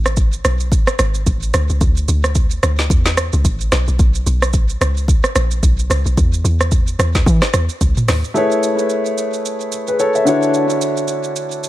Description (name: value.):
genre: amapiano.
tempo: 110 BPM.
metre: 4/4.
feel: swing 58% on 16ths.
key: A major.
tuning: A4 = 438 Hz.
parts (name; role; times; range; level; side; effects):
deep log drum bass; bass; 0.0-8.2 s; G#1 to E3; -16 LUFS; equal; none.
afro-pop drum kit; drums; 0.1-11.7 s; hi-hat, kick drum, rim click, shaker, snare drum, toms; -16 LUFS; equal; none.
warm concert grand piano; accompaniment; 8.3-11.7 s; D3 to E5; -15 LUFS; left 1 dB; analog delay.
room: light reverb.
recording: echo-heavy mix.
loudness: -14 LUFS.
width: side -15 dB against mid.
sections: 0.0-8.4 A section; 8.4-11.7 B section.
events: drop 0.0-8.4.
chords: 0.0 Asus2; 1.5 Dsus2; 3.7 Bsus2; 6.2 N.C.; 8.4 Amaj9; 10.3 Dmaj9.